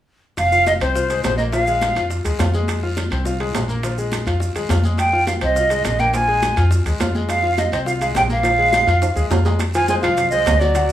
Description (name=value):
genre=latin, salsa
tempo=208 BPM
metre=4/4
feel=straight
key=F minor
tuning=A4 = 440 Hz
part: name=bright silver concert flute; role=melody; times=0.4-2.1, 5.0-10.9 s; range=C5 to Ab5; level=-17 LUFS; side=right 1 dB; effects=none
part: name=upright bass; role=bass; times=0.4-10.9 s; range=F1 to F2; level=-21 LUFS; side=equal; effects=none
part: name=bongos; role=percussion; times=0.4-10.9 s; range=none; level=-32 LUFS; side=left 8 dB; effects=none
part: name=congas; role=percussion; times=0.4-10.9 s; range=none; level=-30 LUFS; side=left 1 dB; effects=none
part: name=guiro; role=percussion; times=0.4-10.9 s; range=none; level=-37 LUFS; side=left 4 dB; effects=none
part: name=maracas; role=percussion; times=0.4-10.9 s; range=none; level=-36 LUFS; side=right 6 dB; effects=none
part: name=timbales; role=percussion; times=0.4-10.9 s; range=none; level=-27 LUFS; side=right 8 dB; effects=none
part: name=bright baby grand piano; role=accompaniment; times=0.5-10.9 s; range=F3 to Gb5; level=-24 LUFS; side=left 3 dB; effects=none
room=light reverb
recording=rough home demo mix, small room ambience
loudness=-16 LUFS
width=side -12 dB against mid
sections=0.4-9.6 A section; 9.6-10.9 B section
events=drum fill 9.0-9.6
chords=0.4 Fm; 1.5 Bb5; 2.7 Fm; 3.8 Bb5; 5.0 Fm7; 6.1 Bb5; 7.3 Fm; 8.4 Bb5; 9.6 Fm7